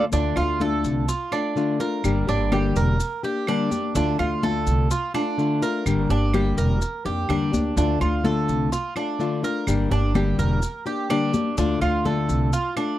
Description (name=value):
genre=latin, Cuban son and guajira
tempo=126 BPM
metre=4/4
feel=straight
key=D minor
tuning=A4 = 440 Hz
part: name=nylon-string guitar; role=accompaniment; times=0.0-13.0 s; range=D3 to G4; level=-24 LUFS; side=left 4 dB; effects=none
part: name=Cuban tres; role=arpeggios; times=0.0-13.0 s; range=D4 to Bb4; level=-26 LUFS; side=right 4 dB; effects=none
part: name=upright bass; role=bass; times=0.0-12.5 s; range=E1 to F2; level=-24 LUFS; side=right 1 dB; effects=none
part: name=congas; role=percussion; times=0.1-13.0 s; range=none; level=-30 LUFS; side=left 2 dB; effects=none
part: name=maracas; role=percussion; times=0.1-13.0 s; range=none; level=-38 LUFS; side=left 6 dB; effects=none
part: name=claves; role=percussion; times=0.4-13.0 s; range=none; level=-36 LUFS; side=right 6 dB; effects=none
room=light reverb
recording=dry, close 1970s-style studio recording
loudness=-20 LUFS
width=side -13 dB against mid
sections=0.1-13.0 A section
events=none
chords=0.1 Dm; 2.0 Gm; 4.0 Dm; 5.9 Gm; 7.8 Dm; 9.7 Gm; 11.6 Dm